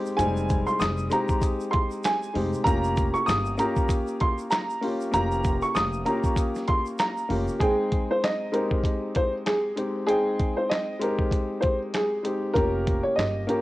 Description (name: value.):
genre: hip hop, boom-bap hip-hop.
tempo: 97 BPM.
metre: 4/4.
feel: swing 59% on 16ths.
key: unclear.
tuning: A4 = 440 Hz.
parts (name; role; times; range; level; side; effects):
dark upright piano; accompaniment; 0.0-13.6 s; G3 to G5; -28 LUFS; left 1 dB; cassette tape, high-pass filter, low-pass filter.
tube shaker; percussion; 0.1-7.6 s; none; -49 LUFS; right 6 dB; none.
dark upright piano; melody; 0.2-13.6 s; Ab4 to Eb6; -26 LUFS; equal; high-pass filter, low-pass filter, cassette tape, tape echo.
upright bass; bass; 0.2-7.5, 12.6-13.5 s; F1 to G1; -30 LUFS; equal; none.
dusty soul sampler-style drum kit; drums; 0.2-13.6 s; handclaps, hi-hat, kick drum, snare drum; -27 LUFS; equal; cassette tape.
room: small room ambience.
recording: home recording on cassette.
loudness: -23 LUFS.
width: side -17 dB against mid.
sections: 0.0-7.6 A section; 7.6-13.6 B section.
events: none.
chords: 0.0 Fm7; 2.7 Eb9/F (rootless); 7.6 Abmaj7; 12.6 Eb9/F.